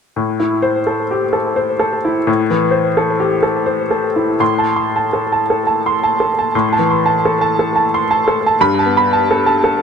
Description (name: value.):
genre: neoclassical minimalist piano.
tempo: 86 BPM.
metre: 3/4.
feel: rubato.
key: A minor.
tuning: A4 = 440 Hz.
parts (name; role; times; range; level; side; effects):
bright upright piano; solo; 0.2-9.8 s; G2 to C6; -13 LUFS; equal; slapback echo.
room: light reverb.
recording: close, detailed microphones.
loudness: -13 LUFS.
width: side -6 dB against mid.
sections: 0.2-4.4 A section; 4.4-9.8 B section.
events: none.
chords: 0.2 Am; 8.6 Gadd9.